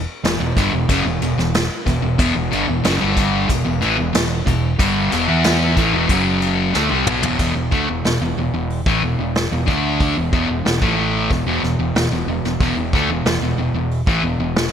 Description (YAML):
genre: hard rock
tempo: 92 BPM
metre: 4/4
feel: straight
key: E minor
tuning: A4 = 439 Hz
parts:
  - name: fingered electric bass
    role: bass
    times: 0.0-14.7 s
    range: E1 to E2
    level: -24 LUFS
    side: equal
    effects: none
  - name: sludgy distorted guitar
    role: riff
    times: 0.2-14.7 s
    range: E2 to E4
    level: -21 LUFS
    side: left 9 dB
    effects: overdrive
  - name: sludgy distorted guitar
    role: riff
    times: 0.2-14.7 s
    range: E2 to E4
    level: -21 LUFS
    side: right 8 dB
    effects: overdrive
  - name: vintage brush drum kit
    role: drums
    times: 0.2-14.7 s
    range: crash cymbal, hi-hat, kick drum, ride cymbal, snare drum, toms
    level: -21 LUFS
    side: equal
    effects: gated reverb
room: light reverb, studio reverb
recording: bright 1980s-style digital production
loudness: -16 LUFS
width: side -8 dB against mid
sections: 0.0-7.4 A section; 7.4-14.7 B section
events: drum fill 6.7-7.4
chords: 0.0 Em; 6.1 F#5; 6.7 Em; 7.4 E5